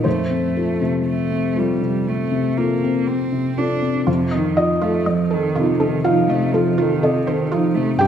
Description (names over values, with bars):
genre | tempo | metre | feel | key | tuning
neoclassical piano and strings | 61 BPM | 4/4 | rubato | unclear | A4 = 439 Hz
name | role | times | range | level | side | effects
felt-muted upright piano | accompaniment | 0.0-8.1 s | F2 to G5 | -19 LUFS | left 2 dB | none
dark cello | second line | 0.1-8.1 s | G2 to D4 | -23 LUFS | right 6 dB | none
resonant blip pluck | arpeggios | 4.1-8.1 s | F4 to Eb5 | -23 LUFS | right 3 dB | phaser, tape echo
room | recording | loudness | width
wet recital hall reverb, RT60 1.7 s | none | -17 LUFS | side -9 dB against mid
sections
0.0-4.1 A section; 4.1-8.1 B section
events
none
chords
0.1 F; 4.1 F7